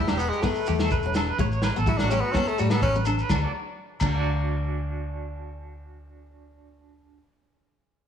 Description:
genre	highlife guitar band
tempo	126 BPM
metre	4/4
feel	swing 54% on 16ths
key	D major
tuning	A4 = 436 Hz
part	raspy tenor saxophone	melody	0.0-3.0 s	G3 to E4	-28 LUFS	left 2 dB	none
part	picked steel-string acoustic guitar	accompaniment	0.0-4.1 s	A3 to D4	-31 LUFS	left 6 dB	none
part	electric guitar at the edge of break-up	arpeggios	0.0-7.3 s	D4 to D5	-32 LUFS	right 6 dB	tremolo, slapback echo
part	vintage muted fingered electric bass	bass	0.0-7.2 s	E1 to A2	-27 LUFS	equal	none
part	crunchy breakbeat drum kit	drums	0.1-4.2 s	crash cymbal, kick drum, snare drum	-29 LUFS	right 1 dB	none
part	agogo bells	percussion	0.1-4.1 s	none	-34 LUFS	left 7 dB	none
part	shekere	percussion	0.1-4.2 s	none	-37 LUFS	right 5 dB	none
room	light reverb, small room ambience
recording	studio ambience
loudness	-22 LUFS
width	side -8 dB against mid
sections	0.0-3.3 A section; 3.3-7.1 B section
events	tenor saxophone solo 0.0-3.3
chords	0.0 Em; 1.4 A; 3.3 D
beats	0.43 0.91 | 1.39 1.86 2.34 2.82 | 3.30 3.78 4.25 4.73 | 5.21 5.69 6.17 6.65

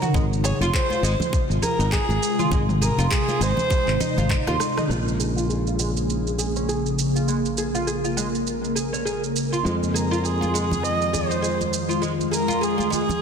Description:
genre	organic downtempo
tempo	101 BPM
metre	4/4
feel	swing 58% on 16ths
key	Bb minor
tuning	A4 = 438 Hz
part	dark kamancheh	melody	0.0-4.3, 10.0-13.2 s	Ab4 to Eb5	-26 LUFS	equal	digital delay
part	ethereal airy pad	sustained chords	0.0-13.2 s	C3 to Bb4	-26 LUFS	left 1 dB	ensemble chorus, built-in reverb, sidechain pumping
part	oud	arpeggios	0.0-13.0 s	Ab3 to Eb5	-28 LUFS	right 1 dB	low-pass filter, digital delay
part	organic electronic drum kit	drums	0.0-13.2 s	handclaps, rim click, shaker, toms	-30 LUFS	right 3 dB	small room reverb
part	sustaining fretless electric bass	bass	0.1-13.2 s	F1 to F2	-26 LUFS	equal	sidechain pumping
part	electronic kick drum	drums	0.1-4.4 s	none	-23 LUFS	equal	small room reverb
part	congas	percussion	0.9-4.7, 9.8-13.2 s	none	-32 LUFS	right 2 dB	none
part	felt-muted upright piano	accompaniment	4.9-13.2 s	Db3 to F4	-33 LUFS	right 1 dB	none
room	moderate lush hall reverb, RT60 1.9 s, small room ambience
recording	dense, heavily limited modern master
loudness	-20 LUFS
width	side -6 dB against mid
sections	0.0-4.9 A section; 4.9-13.2 B section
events	drum fill 4.3-4.9; band accent 4.7; filter sweep on oud 4.9-13.2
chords	0.1 Ab6; 4.9 Bbm7; 9.7 Fm7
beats	| 0.14 0.74 1.33 1.93 | 2.52 3.12 3.71 4.30 | 4.90 5.49 6.09 6.68 | 7.27 7.87 8.46 9.06 | 9.65 10.24 10.84 11.43 | 12.03 12.62 13.21

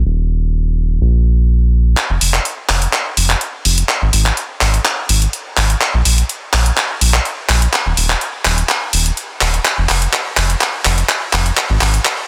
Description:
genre	progressive house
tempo	125 BPM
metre	4/4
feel	straight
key	unclear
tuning	A4 = 442 Hz
part	round analog bass	bass	0.0-12.0 s	Eb1 to Bb1	-16 LUFS	equal	none
part	house drum kit	drums	2.0-12.2 s	handclaps, hi-hat	-17 LUFS	equal	soft clipping on snare, high-pass filter on snare, high-pass filter on hats, high-pass filter on room
room	light reverb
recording	dense, heavily limited modern master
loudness	-15 LUFS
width	mono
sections	0.0-2.0 A section; 2.0-12.3 B section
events	build-up 2.0-12.3; drum fill 2.0-12.3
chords	none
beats	| 0.05 0.53 1.01 1.49 | 1.97 2.45 2.93 3.41 | 3.89 4.37 4.85 5.33 | 5.81 6.29 6.77 7.25 | 7.73 8.21 8.69 9.17 | 9.65 10.13 10.61 11.09 | 11.57 12.05

